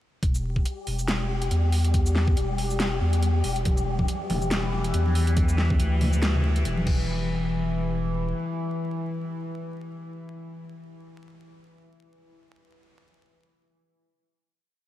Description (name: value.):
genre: deep dubstep.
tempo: 140 BPM.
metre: 4/4.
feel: swing 56% on 16ths, half-time.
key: E minor.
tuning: A4 = 440 Hz.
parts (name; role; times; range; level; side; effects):
saturated sub bass; bass; 0.2-8.3 s; E1 to E2; -24 LUFS; equal; none.
dubstep drum kit; drums; 0.2-7.0 s; crash cymbal, hi-hat, shaker, snare drum; -32 LUFS; equal; none.
electronic kick drum; drums; 0.2-7.0 s; none; -24 LUFS; equal; none.
wind-like tuned noise texture; texture; 0.5-7.1 s; G3 to G4; -33 LUFS; left 4 dB; built-in reverb, analog chorus.
overtone-sweeping drone; sustained chords; 4.3-10.5 s; E3; -31 LUFS; left 1 dB; chorus, built-in reverb.
congas; percussion; 3.7-7.0 s; none; -32 LUFS; equal; dub echo.
room: light reverb, digital ambience.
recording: vinyl crackle.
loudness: -23 LUFS.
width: side -14 dB against mid.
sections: 0.2-7.1 drop; 7.1-10.5 final hit.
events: drop 0.2-7.1.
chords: 0.2 Em; 7.1 N.C..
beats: | 0.23 0.66 1.08 1.51 | 1.94 2.37 2.80 3.23 | 3.65 4.08 4.51 4.94 | 5.37 5.80 6.23 6.66 | 7.08 7.51 7.94 8.37 | 8.80 9.23 9.65 10.08.